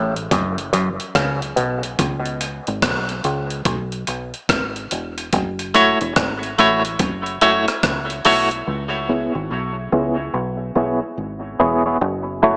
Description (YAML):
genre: dub reggae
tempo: 72 BPM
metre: 4/4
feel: swing 63% on 16ths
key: C# minor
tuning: A4 = 443 Hz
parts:
  - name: mellow clav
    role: riff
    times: 0.0-1.8 s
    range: F#2 to C#3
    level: -22 LUFS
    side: equal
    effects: auto-wah, dub echo
  - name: deep dub fingered electric bass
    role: bass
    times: 0.0-12.6 s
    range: E1 to C#2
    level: -25 LUFS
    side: equal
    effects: none
  - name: breakbeat sampler-style drum kit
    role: drums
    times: 0.2-8.7 s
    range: hi-hat, kick drum, rim click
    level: -21 LUFS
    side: equal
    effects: none
  - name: clean electric guitar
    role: accompaniment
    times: 5.7-12.6 s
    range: A3 to C#5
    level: -17 LUFS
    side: equal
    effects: tremolo, low-pass filter, dub echo
room: moderate echo chamber reverb, RT60 2.4 s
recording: small speaker sound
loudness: -17 LUFS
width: side -38 dB against mid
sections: 0.0-8.7 A section; 8.7-12.6 B section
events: break 0.0-5.3; filter sweep on clean electric guitar 8.7-12.6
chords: 0.0 F#m; 2.0 C#m7; 5.3 F#m7; 8.7 C#m7; 12.0 F#m7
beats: 0.32 1.15 | 1.99 2.82 3.66 4.50 | 5.33 6.17 7.00 7.83 | 8.67 9.51 10.34 11.18 | 12.01